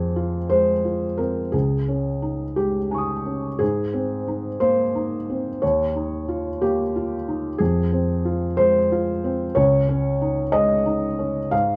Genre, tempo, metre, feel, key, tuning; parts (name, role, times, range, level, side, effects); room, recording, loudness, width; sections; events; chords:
neoclassical minimalist piano; 60 BPM (dotted quarters); 6/8; rubato; Ab major; A4 = 439 Hz
felt-muted upright piano; solo; 0.0-11.8 s; Db2 to Eb6; -22 LUFS; equal
moderate large studio reverb, RT60 0.9 s; band playing live in one room; -22 LUFS; mono
0.0-3.6 A section; 3.6-11.8 A section
0.0 Fm; 1.5 Dbsus2; 3.6 Abadd9; 5.6 Ebadd9; 7.6 Fm; 9.6 Dbsus2